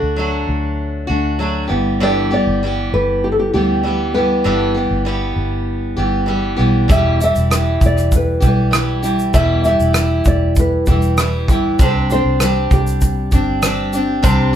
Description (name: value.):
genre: acoustic pop.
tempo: 98 BPM.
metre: 4/4.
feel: straight.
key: G major.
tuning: A4 = 438 Hz.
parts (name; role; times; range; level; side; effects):
nylon-string guitar; melody; 0.0-14.6 s; G4 to E5; -20 LUFS; left 1 dB; none.
picked steel-string acoustic guitar; accompaniment; 0.0-14.6 s; E2 to G4; -18 LUFS; equal; none.
vintage muted fingered electric bass; bass; 0.0-14.6 s; E1 to D2; -19 LUFS; equal; none.
loose indie drum kit; drums; 6.9-14.4 s; kick drum, rim click, shaker; -17 LUFS; equal; none.
room: light reverb.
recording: band playing live in one room.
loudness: -13 LUFS.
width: side -10 dB against mid.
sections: 0.0-14.6 A section.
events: none.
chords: 0.0 D; 1.7 G6; 6.9 Em; 11.8 Csus2.